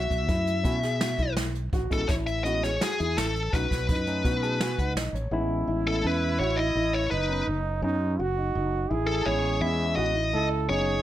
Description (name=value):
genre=progressive instrumental, band music in an uneven meter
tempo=167 BPM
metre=5/4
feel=straight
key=unclear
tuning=A4 = 440 Hz
part: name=bluesy overdriven lead guitar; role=melody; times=0.0-11.0 s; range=G#4 to E5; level=-28 LUFS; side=left 2 dB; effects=distortion, slapback echo
part: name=dark baby grand piano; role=arpeggios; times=0.0-11.0 s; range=C#4 to G#4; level=-32 LUFS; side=equal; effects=slapback echo
part: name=fretless electric bass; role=bass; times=0.0-11.0 s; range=F#1 to B2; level=-29 LUFS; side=equal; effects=none
part: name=jazz brush drum kit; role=drums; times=0.1-5.2 s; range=hi-hat, kick drum, snare drum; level=-29 LUFS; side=equal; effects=none
part: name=barky tine electric piano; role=accompaniment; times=0.3-10.9 s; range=F#3 to A5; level=-33 LUFS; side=left 2 dB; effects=none
part: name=bright trombone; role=second line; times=5.3-11.0 s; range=D#4 to A4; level=-31 LUFS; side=right 4 dB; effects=none
room=light reverb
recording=none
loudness=-24 LUFS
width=side -12 dB against mid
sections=0.0-5.3 A section; 5.3-11.0 B section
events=tine electric piano fill 4.2-5.3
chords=0.0 B7sus4; 1.7 Amaj7; 3.5 B7; 5.3 Amaj7; 7.1 Badd9/F#; 8.9 Amaj7